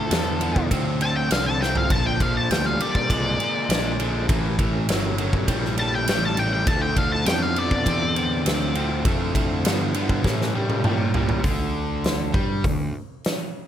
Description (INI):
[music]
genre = blues rock power trio and southern rock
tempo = 101 BPM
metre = 4/4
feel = straight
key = D minor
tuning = A4 = 440 Hz
[part]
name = octave-fuzz lead guitar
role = melody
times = 0.0-9.3 s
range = A4 to A5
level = -26 LUFS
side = left 2 dB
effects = wah, distortion
[part]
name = overdriven tonewheel organ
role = sustained chords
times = 0.0-11.4 s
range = C#4 to C5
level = -35 LUFS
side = right 4 dB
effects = chorus vibrato, fast rotary speaker
[part]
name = cranked stack guitar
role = riff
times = 0.0-12.9 s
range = A2 to C4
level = -26 LUFS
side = left 1 dB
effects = overdrive
[part]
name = fuzz picked electric bass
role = bass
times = 0.1-12.9 s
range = G1 to Bb2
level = -26 LUFS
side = equal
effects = overdrive
[part]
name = huge arena drum kit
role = drums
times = 0.1-13.4 s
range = hi-hat, kick drum, ride cymbal, snare drum, toms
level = -24 LUFS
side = equal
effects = none
[sound]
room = light reverb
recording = none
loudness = -20 LUFS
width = side -10 dB against mid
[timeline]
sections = 0.0-11.4 A section; 11.4-13.7 B section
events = lead electric guitar solo 0.0-11.4; drum fill 1.6, 10.3-11.4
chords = 0.0 Dm7; 1.9 Bbmaj7; 4.3 A7b9; 6.7 Dm7; 10.3 A7b9; 11.4 N.C.